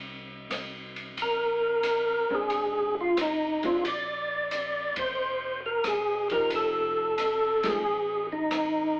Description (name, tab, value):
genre	soul jazz organ trio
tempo	90 BPM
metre	4/4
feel	swing 68% on 8ths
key	unclear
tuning	A4 = 440 Hz
part	tonewheel organ	bass	0.0-9.0 s	E1 to C2	-52 LUFS	equal	overdrive, stopped rotary speaker
part	open jazz drum kit	drums	0.5-8.7 s	hi-hat, kick drum, ride cymbal, rim click, snare drum	-35 LUFS	equal	none
part	percussive tonewheel organ	melody	1.2-9.0 s	Eb4 to D5	-25 LUFS	equal	slow rotary speaker, overdrive, chorus vibrato
part	hollow-body jazz guitar	accompaniment	2.3-7.8 s	F3 to G4	-35 LUFS	equal	none
room	wet studio reverb, RT60 0.6 s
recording	band playing live in one room, AM radio sound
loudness	-25 LUFS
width	side -26 dB against mid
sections	0.0-9.0 A section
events	band accent 4.8-5.2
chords	0.0 N.C.; 1.2 Bb9; 6.5 F9